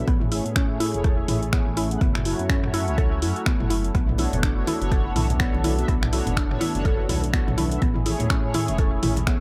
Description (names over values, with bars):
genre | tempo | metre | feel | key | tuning
afro house | 124 BPM | 4/4 | swing 58% on 16ths | B dorian | A4 = 440 Hz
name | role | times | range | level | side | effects
warm analog pad | sustained chords | 0.0-9.4 s | F#3 to G#4 | -36 LUFS | equal | chorus, tremolo, sidechain pumping
mellow synth brass | stabs | 0.0-9.4 s | A3 to F#5 | -33 LUFS | equal | chorus, phaser, sidechain pumping, tape echo
smooth synth bass | bass | 0.0-9.4 s | E1 to A2 | -29 LUFS | equal | sidechain pumping
mallet-like synth pluck | arpeggios | 0.1-9.4 s | B3 to A4 | -32 LUFS | equal | chorus, sidechain pumping, analog delay
deep house drum kit | drums | 0.1-9.4 s | finger snaps, hi-hat, toms | -32 LUFS | equal | tape echo
electronic kick drum | drums | 0.1-9.4 s | none | -25 LUFS | equal | none
congas | percussion | 4.2-9.3 s | none | -33 LUFS | equal | tape echo
room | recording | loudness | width
light reverb, digital ambience | echo-heavy mix | -23 LUFS | mono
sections
0.0-9.4 A section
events
filter sweep on synth arpeggio sound 0.0-9.4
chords
0.1 Amaj7; 2.0 F#m7; 3.9 Bm9; 7.8 Amaj7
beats
| 0.08 0.56 1.05 1.53 | 2.01 2.50 2.98 3.46 | 3.95 4.43 4.92 5.40 | 5.88 6.37 6.85 7.34 | 7.82 8.30 8.79 9.27